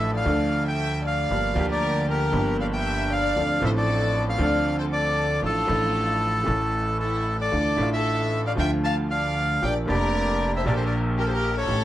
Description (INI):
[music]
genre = tango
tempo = 116 BPM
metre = 4/4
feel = rubato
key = D minor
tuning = A4 = 440 Hz
[part]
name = bandoneon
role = melody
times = 0.0-11.8 s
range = A4 to A5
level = -26 LUFS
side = equal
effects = plate reverb
[part]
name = warm studio violin section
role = second line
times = 0.0-11.8 s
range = E4 to F5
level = -31 LUFS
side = left 3 dB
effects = none
[part]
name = clear upright piano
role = accompaniment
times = 0.0-11.8 s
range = F1 to A4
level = -26 LUFS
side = right 1 dB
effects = none
[part]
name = upright bass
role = bass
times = 0.0-11.8 s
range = F1 to D2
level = -27 LUFS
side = right 1 dB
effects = none
[sound]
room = moderate club reverb, RT60 0.5 s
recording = none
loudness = -21 LUFS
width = side -13 dB against mid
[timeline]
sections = 0.0-11.8 A section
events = none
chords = 0.0 Dm; 1.3 Gm7; 3.4 Dm7; 5.4 Dm/A; 6.5 A; 7.5 Dmadd9; 9.6 Bb6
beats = 0.26 0.78 | 1.30 1.81 2.33 2.85 | 3.36 3.88 4.40 4.92 | 5.43 5.96 6.48 7.00 | 7.53 8.05 8.58 9.10 | 9.62 10.14 10.66 11.18 | 11.69